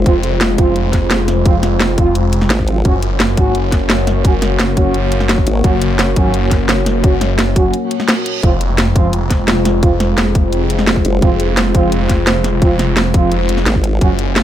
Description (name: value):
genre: dark technical drum and bass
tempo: 172 BPM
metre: 4/4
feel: straight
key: F phrygian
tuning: A4 = 439 Hz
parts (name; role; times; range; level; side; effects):
- dark analog pad; sustained chords; 0.0-14.4 s; Ab3 to Db5; -19 LUFS; left 2 dB; chorus, sidechain pumping
- formant-sweep wobble bass; bass; 0.0, 2.5-2.8, 5.5-5.6, 11.0-11.2, 13.7-14.0 s; Gb1 to Ab1; -15 LUFS; equal; chorus
- dark brass ensemble; stabs; 0.1-14.1 s; F3 to Gb4; -20 LUFS; right 3 dB; dub echo
- phased detuned saw bass; bass; 0.1-14.4 s; F1 to Ab1; -16 LUFS; equal; phaser, tube saturation, sidechain pumping
- drum and bass drum kit; drums; 0.1-14.4 s; hi-hat, snare drum; -17 LUFS; right 1 dB; overdrive
- electronic kick drum; drums; 0.1-14.1 s; none; -13 LUFS; equal; overdrive
- reverse cymbal; sound effects; 7.9-8.4 s; none; -26 LUFS; right 7 dB; none
room: light reverb, digital ambience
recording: none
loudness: -11 LUFS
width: side -11 dB against mid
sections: 0.0-14.4 A section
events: break 7.7-8.4; reverse cymbal 7.9-8.4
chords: 0.0 Fm; 2.9 Gb; 8.4 Fm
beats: | 0.06 0.41 0.76 1.11 | 1.46 1.80 2.15 2.50 | 2.85 3.20 3.55 3.90 | 4.25 4.59 4.94 5.29 | 5.64 5.99 6.34 6.69 | 7.04 7.39 7.73 8.08 | 8.43 8.78 9.13 9.48 | 9.83 10.18 10.53 10.87 | 11.22 11.57 11.92 12.27 | 12.62 12.97 13.32 13.66 | 14.01 14.36